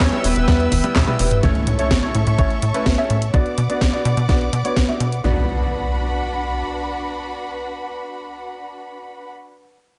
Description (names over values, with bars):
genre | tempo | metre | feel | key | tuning
italo disco | 126 BPM | 4/4 | straight | B minor | A4 = 439 Hz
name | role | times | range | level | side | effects
analog synth brass | melody | 0.0-1.2 s | B3 to C#5 | -26 LUFS | equal | chorus, delay
rich studio string section | sustained chords | 0.0-9.3 s | D4 to E6 | -29 LUFS | equal | vintage 12-bit sampler grit
clear grand piano | stabs | 0.0-9.3 s | G3 to E5 | -27 LUFS | equal | low-pass filter, delay
tight sequencer bass | bass | 0.0-6.6 s | E1 to B2 | -23 LUFS | equal | none
electronic kick drum | drums | 0.0-4.9 s | none | -21 LUFS | equal | none
house drum kit | drums | 0.0-5.2 s | handclaps, hi-hat, snare drum, toms | -25 LUFS | equal | overdrive, gated reverb
impact | sound effects | 1.4-9.3 s | none | -29 LUFS | equal | none
room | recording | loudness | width
light reverb, digital ambience | nothing above 10.8 kHz | -19 LUFS | mono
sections
0.0-1.4 A section; 1.4-5.2 B section; 5.2-9.1 C section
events
drum fill 0.7-1.4; impact 1.4-3.3; filter sweep on grand piano 1.4-5.2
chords
0.0 Em; 1.4 A; 3.3 Bm